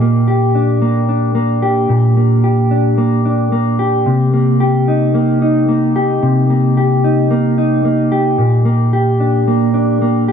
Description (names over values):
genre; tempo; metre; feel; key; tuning
dream pop; 111 BPM; 4/4; straight; unclear; A4 = 440 Hz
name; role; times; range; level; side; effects
mellow electric guitar; solo; 0.0-10.3 s; Bb2 to G4; -11 LUFS; equal; wide subtle chorus, ping-pong delay
room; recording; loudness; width
light reverb, digital ambience; none; -11 LUFS; side -7 dB against mid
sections
0.0-8.4 A section; 8.4-10.3 A section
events
none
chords
0.0 Bb6; 4.1 Cm7; 8.4 Bb6